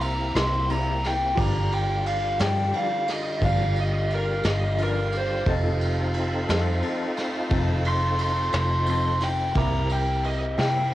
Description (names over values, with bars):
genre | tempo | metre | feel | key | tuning
slow blues | 59 BPM (dotted quarters) | 12/8 | straight | unclear | A4 = 440 Hz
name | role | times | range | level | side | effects
lead guitar through a small cranked amp | melody | 0.0-10.9 s | Bb4 to C6 | -26 LUFS | left 1 dB | overdrive, cassette tape
warm grand piano | accompaniment | 0.0-10.9 s | E4 to D6 | -37 LUFS | right 7 dB | cassette tape
edgy saxophone section | sustained chords | 0.0-10.9 s | G3 to F4 | -35 LUFS | left 1 dB | cassette tape
tonewheel organ | sustained chords | 0.0-10.9 s | D3 to Bb4 | -32 LUFS | equal | slow rotary speaker, overdrive, chorus vibrato, cassette tape
vintage muted fingered electric bass | bass | 0.0-10.9 s | F1 to C3 | -25 LUFS | equal | none
vintage brush drum kit | drums | 0.0-10.8 s | kick drum, ride cymbal, snare drum | -30 LUFS | right 1 dB | none
electric guitar through a small old amp | accompaniment | 0.7-10.9 s | G2 to A4 | -34 LUFS | left 7 dB | tremolo, cassette tape
room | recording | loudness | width
light reverb, studio reverb | home recording on cassette | -22 LUFS | side -14 dB against mid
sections
0.0-10.9 A section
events
lead electric guitar solo 0.0-10.9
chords
0.0 C7; 1.4 G7; 5.5 F7; 9.6 C7